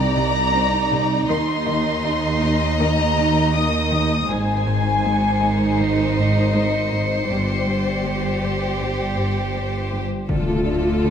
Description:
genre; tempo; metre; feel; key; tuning
cinematic, suspense film score; 80 BPM; 4/4; straight; unclear; A4 = 439 Hz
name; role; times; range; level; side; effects
dark studio violin section; melody; 0.0-11.1 s; D5 to Eb6; -24 LUFS; left 3 dB; none
rich chamber violin section; second line; 0.0-11.1 s; Eb4 to Eb5; -24 LUFS; equal; none
bright studio double bass section; bass; 0.0-11.1 s; G1 to Eb2; -25 LUFS; right 2 dB; none
rich symphonic cello section; bass; 0.0-11.1 s; C2 to D3; -25 LUFS; right 2 dB; none
clear chamber cello section; riff; 0.2-11.1 s; G2 to Eb4; -27 LUFS; equal; none
rich studio violin section; texture; 4.3-9.9 s; C7 to Db7; -30 LUFS; right 1 dB; none
rich chamber viola section; accompaniment; 10.3-11.1 s; F4; -26 LUFS; right 2 dB; none
warm French horn section; sustained chords; 10.3-11.1 s; A3 to F4; -22 LUFS; left 4 dB; none
impact; sound effects; 10.3-11.1 s; none; -25 LUFS; left 1 dB; none
room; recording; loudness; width
moderate scoring stage reverb, RT60 1.5 s; none; -18 LUFS; side -8 dB against mid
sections
0.0-10.3 A section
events
impact 10.3-11.1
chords
0.0 Cmadd9; 1.3 Eb5; 4.3 Ab; 7.3 Gsus4; 10.3 Dm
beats
0.54 | 1.29 2.04 2.79 3.54 | 4.29 5.04 5.79 6.54 | 7.29 8.04 8.79 9.54 | 10.29 11.04

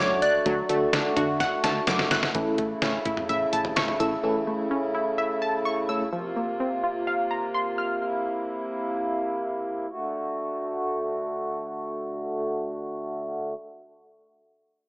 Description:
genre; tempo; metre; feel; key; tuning
synth-pop; 127 BPM; 4/4; straight; D major; A4 = 439 Hz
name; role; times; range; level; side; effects
soft struck synth lead; melody; 0.0-0.9 s; C#5 to D5; -25 LUFS; equal; chorus, tremolo
pedal harmonium; sustained chords; 0.0-13.5 s; C3 to F#4; -28 LUFS; equal; low-pass filter
analog pluck; arpeggios; 0.0-8.0 s; E3 to F#6; -28 LUFS; equal; chorus, low-pass filter, tape echo
solid FM bass; bass; 0.0-4.2 s; G1 to D3; -32 LUFS; equal; none
detuned 8-bit digital drum machine; drums; 0.2-4.1 s; hi-hat, kick drum, snare drum, toms; -27 LUFS; equal; none
FM electric piano with tremolo; accompaniment; 0.5-6.0 s; A3 to A4; -27 LUFS; equal; phaser, low-pass filter
room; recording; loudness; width
moderate lush hall reverb, RT60 2.0 s; small speaker sound; -24 LUFS; side -33 dB against mid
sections
0.0-2.3 A section; 2.3-9.9 B section; 9.9-13.7 C section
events
drum fill 1.4-2.3; filter sweep 2.3-9.9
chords
0.0 D; 2.3 A; 6.1 Bbsus2; 9.9 D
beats
| 0.46 0.93 1.40 1.88 | 2.35 2.82 3.29 3.77 | 4.24 4.71 5.18 5.65 | 6.13 6.60 7.07 7.54 | 8.02 8.49 8.96 9.43 | 9.91 10.38 10.85 11.32 | 11.80 12.27 12.74 13.21

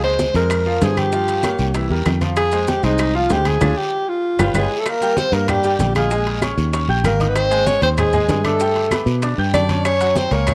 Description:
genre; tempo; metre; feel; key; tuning
Afro-Cuban jazz; 193 BPM; 4/4; straight; unclear; A4 = 440 Hz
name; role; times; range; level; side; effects
breathy alto saxophone; melody; 0.0-10.5 s; Eb4 to D5; -22 LUFS; equal; none
clear concert grand piano; accompaniment; 0.0-10.5 s; E3 to G6; -27 LUFS; equal; none
fingered electric bass; bass; 0.0-10.5 s; G1 to B2; -23 LUFS; equal; none
bongos; percussion; 0.0-10.5 s; none; -30 LUFS; equal; none
congas; percussion; 0.0-10.5 s; none; -29 LUFS; equal; none
timbales; percussion; 0.0-10.5 s; none; -33 LUFS; equal; none
guiro; percussion; 0.2-10.5 s; none; -36 LUFS; equal; none
maracas; percussion; 0.2-10.5 s; none; -40 LUFS; equal; none
claves; percussion; 0.5-10.5 s; none; -32 LUFS; equal; none
trombone with cup mute; second line; 4.6-10.5 s; G3 to D4; -28 LUFS; equal; none
room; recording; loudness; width
light reverb, studio reverb; none; -18 LUFS; mono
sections
0.0-4.9 A section; 4.9-10.5 B section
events
band accent 3.6-4.9; drum fill 3.9-4.9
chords
0.0 Dbmaj7; 1.1 Gm7b5; 1.7 C7; 2.4 Fm7; 3.6 Ddim; 4.2 G7; 4.9 Abmaj13; 6.1 Bbm7; 6.7 Eb7; 7.4 Abmaj7; 8.6 Gadd9; 9.8 Gb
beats
0.19 0.50 0.81 | 1.12 1.44 1.75 2.06 | 2.37 2.68 2.99 3.30 | 3.62 3.93 4.24 4.55 | 4.86 5.17 5.49 5.80 | 6.11 6.42 6.73 7.04 | 7.35 7.67 7.98 8.29 | 8.60 8.91 9.22 9.54 | 9.85 10.16 10.47

